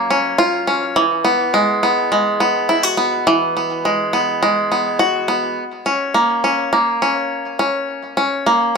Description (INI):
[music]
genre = folktronica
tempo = 104 BPM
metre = 4/4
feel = straight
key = F# major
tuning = A4 = 441 Hz
[part]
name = bluegrass banjo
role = solo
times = 0.0-8.8 s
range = E3 to F#4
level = -15 LUFS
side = equal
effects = none
[sound]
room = moderate small room reverb, RT60 0.6 s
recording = none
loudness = -15 LUFS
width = side -4 dB against mid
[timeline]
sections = 0.0-8.8 A section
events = none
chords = 0.0 F#maj7; 1.0 Eadd9; 5.6 F#